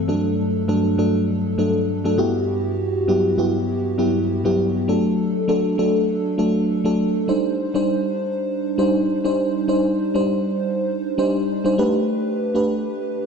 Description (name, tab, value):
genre	pop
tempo	100 BPM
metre	4/4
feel	swing 55% on 16ths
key	unclear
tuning	A4 = 440 Hz
part	FM electric piano with soft pad layer	solo	0.0-13.3 s	G2 to C5	-18 LUFS	equal	chorus
room	moderate lush hall reverb, RT60 2.5 s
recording	dark, warm production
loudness	-18 LUFS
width	side -6 dB against mid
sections	0.0-7.3 A section; 7.3-13.3 B section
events	none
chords	0.1 D/G; 2.2 Emadd9/G; 4.9 D; 7.3 Cmadd9; 11.8 Gadd9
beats	| 0.09 0.69 1.28 1.89 | 2.48 3.08 3.69 4.29 | 4.88 5.49 6.08 6.68 | 7.29 7.88 8.48 9.09 | 9.69 10.29 10.88 11.48 | 12.09 12.69